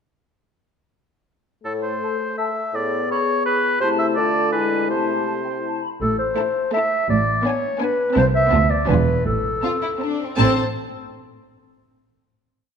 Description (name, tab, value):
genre	cinematic, playful, whimsical film cue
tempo	166 BPM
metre	3/4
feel	straight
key	A minor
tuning	A4 = 440 Hz
part	warm oboe	second line	1.6-5.8 s	A4 to E5	-23 LUFS	right 1 dB	none
part	warm bassoon	accompaniment	1.6-5.8 s	A2 to D3	-27 LUFS	right 1 dB	none
part	dark French horn section	sustained chords	1.6-5.8 s	G#3 to A4	-26 LUFS	left 7 dB	none
part	dark clarinet	second line	2.0-10.5 s	E4 to E5	-22 LUFS	left 1 dB	none
part	mellow hollow flute section	second line	2.0-5.9 s	G5 to B5	-30 LUFS	left 4 dB	none
part	rich studio cello section	bass	6.0-10.6 s	C2 to A2	-23 LUFS	right 4 dB	none
part	warm studio double bass section	bass	6.0-10.6 s	E1 to D2	-23 LUFS	right 4 dB	none
part	rich studio violin section	melody	6.4-10.6 s	G#5 to A5	-30 LUFS	left 5 dB	none
part	rich studio violin section	second line	6.4-10.6 s	C4 to C5	-29 LUFS	left 4 dB	none
part	rich studio viola section	accompaniment	6.4-10.6 s	A3 to D4	-26 LUFS	right 2 dB	none
room	moderate scoring stage reverb, RT60 1.8 s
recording	none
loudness	-18 LUFS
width	side -6 dB against mid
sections	1.7-6.0 A section; 6.0-10.4 A section; 10.4-11.5 final chord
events	none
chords	1.7 N.C.; 2.7 G#dim/A; 3.8 Am/C; 4.2 Dm; 4.5 E7/D; 4.9 Am/C; 6.0 Am; 7.1 G#dim/A; 8.2 Am/C; 8.5 Bm7b5/D; 8.9 E7b9; 9.3 Am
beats	| 1.65 2.02 2.38 | 2.74 3.10 3.46 | 3.81 4.17 4.53 | 4.90 5.27 5.65 | 6.02 6.38 6.74 | 7.10 7.46 7.81 | 8.16 8.52 8.88 | 9.26 9.63 10.01 | 10.38